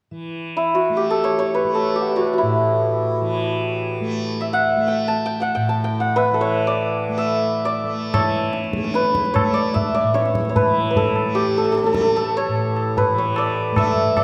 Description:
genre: indian classical, Hindustani.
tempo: free time.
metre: none.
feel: none.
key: A raga khamaj.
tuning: A4 = 440 Hz.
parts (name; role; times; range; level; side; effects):
tanpura; drone; 0.1-14.2 s; A2 to A3; -27 LUFS; equal; none.
santur; melody; 0.6-14.2 s; E4 to A5; -21 LUFS; equal; none.
tabla; percussion; 8.1-14.2 s; none; -26 LUFS; equal; none.
room: wet recital hall reverb, RT60 1.7 s.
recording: none.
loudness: -20 LUFS.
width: mono.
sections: 0.1-8.1 A section; 8.1-14.2 B section.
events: none.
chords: none.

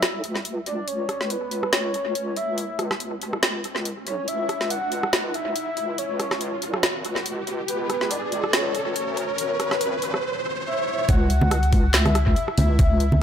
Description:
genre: deep dubstep.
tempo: 141 BPM.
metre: 4/4.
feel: swing 55% on 16ths, half-time.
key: C# phrygian.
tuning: A4 = 441 Hz.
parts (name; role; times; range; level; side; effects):
breathy flute-like synth lead; melody; 0.0-13.2 s; B4 to F#5; -28 LUFS; left 1 dB; analog chorus, analog delay.
deep soft wobble bass; bass; 0.0-13.2 s; G#1 to D2; -26 LUFS; equal; chorus, high-pass filter.
deep house drum kit; drums; 0.0-13.1 s; handclaps, hi-hat, rim click, snare drum; -25 LUFS; equal; small room reverb, analog delay.
riser; sound effects; 0.3-11.1 s; none; -31 LUFS; right 2 dB; none.
electronic kick drum; drums; 11.1-12.9 s; none; -19 LUFS; equal; small room reverb.
congas; percussion; 11.1-13.2 s; none; -24 LUFS; right 1 dB; none.
room: light reverb.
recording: echo-heavy mix.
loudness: -21 LUFS.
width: side -9 dB against mid.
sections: 0.0-11.1 A section; 11.1-13.2 B section.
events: build-up 0.0-11.1; filter sweep on soft synth lead 0.0-11.1; riser 0.3-11.1; drop 11.1-13.2.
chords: 0.0 C#m.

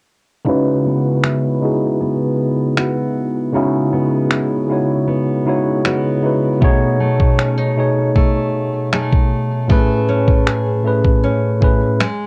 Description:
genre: contemporary R&B.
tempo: 78 BPM.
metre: 4/4.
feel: straight.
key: C# minor.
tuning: A4 = 440 Hz.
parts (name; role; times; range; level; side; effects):
tine electric piano; accompaniment; 0.4-12.0 s; A2 to C#5; -19 LUFS; equal; low-pass filter, cassette tape.
nylon-string guitar; arpeggios; 0.5-12.3 s; B2 to G#4; -24 LUFS; equal; low-pass filter, cassette tape.
dusty soul sampler-style drum kit; drums; 1.2-12.2 s; finger snaps, kick drum; -17 LUFS; equal; cassette tape.
room: moderate booth ambience, RT60 0.2 s.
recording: home recording on cassette.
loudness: -16 LUFS.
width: mono.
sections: 0.5-12.3 A section.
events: filter sweep 0.5-12.3.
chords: 0.5 C#m11; 6.6 B13; 9.7 Amaj9.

